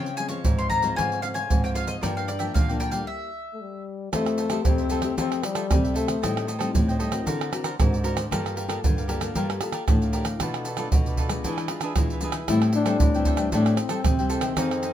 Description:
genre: samba and choro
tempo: 115 BPM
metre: 4/4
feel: straight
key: unclear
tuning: A4 = 440 Hz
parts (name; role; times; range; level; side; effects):
- mandolin; melody; 0.0-3.8 s; D5 to Db6; -29 LUFS; left 3 dB; none
- cavaquinho; accompaniment; 0.0-14.9 s; D4 to G5; -34 LUFS; right 2 dB; none
- nylon-string guitar; accompaniment; 0.0-14.9 s; F2 to Bb4; -32 LUFS; left 4 dB; none
- nylon-string guitar; bass; 0.0-14.9 s; F2 to E3; -28 LUFS; equal; none
- maracas, pandeiro, surdo and tamborim; percussion; 0.1-14.9 s; none; -25 LUFS; right 1 dB; none
- breathy trombone; second line; 3.5-6.5, 12.5-14.9 s; G3 to E4; -27 LUFS; left 6 dB; none
room: moderate studio reverb, RT60 0.6 s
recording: minimal, uncompressed stereo recording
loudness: -22 LUFS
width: side -11 dB against mid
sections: 0.0-4.1 A section; 4.1-14.9 B section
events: stop 3.1-4.1; trombone solo 4.1-14.9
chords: 0.0 Dbmaj7; 2.0 Gm7; 3.1 Gm6; 4.1 Fmaj9; 6.2 Am7b5; 7.3 Daug7; 8.3 Gm9; 10.4 Bm7b5; 11.5 E7b9; 12.5 Am7

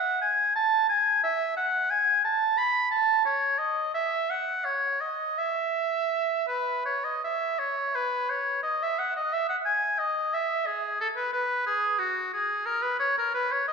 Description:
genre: classical, baroque-style fantasia for unaccompanied oboe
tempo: 59 BPM (dotted quarters)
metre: 6/8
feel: rubato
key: E major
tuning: A4 = 440 Hz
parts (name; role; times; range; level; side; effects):
- clear oboe; solo; 0.0-13.7 s; F#4 to B5; -24 LUFS; right 1 dB; none
room: wet concert hall reverb, RT60 1.8 s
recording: recorded in a church or concert hall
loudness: -24 LUFS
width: side -5 dB against mid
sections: 0.0-7.6 A section; 7.6-13.7 B section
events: none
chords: none

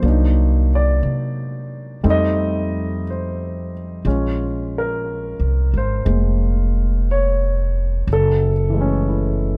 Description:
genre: jazz ballad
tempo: 60 BPM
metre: 4/4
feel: swing 67% on 8ths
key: unclear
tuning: A4 = 440 Hz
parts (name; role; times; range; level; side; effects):
- warm grand piano; accompaniment; 0.0-9.6 s; Fb3 to Eb5; -24 LUFS; equal; none
- upright bass; bass; 0.0-9.6 s; F1 to C3; -21 LUFS; equal; none
room: light reverb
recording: none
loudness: -19 LUFS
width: mono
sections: 0.0-9.6 A section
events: none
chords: 0.0 Cm7b5; 2.0 F7; 4.1 Bbm9; 8.1 Gbm7

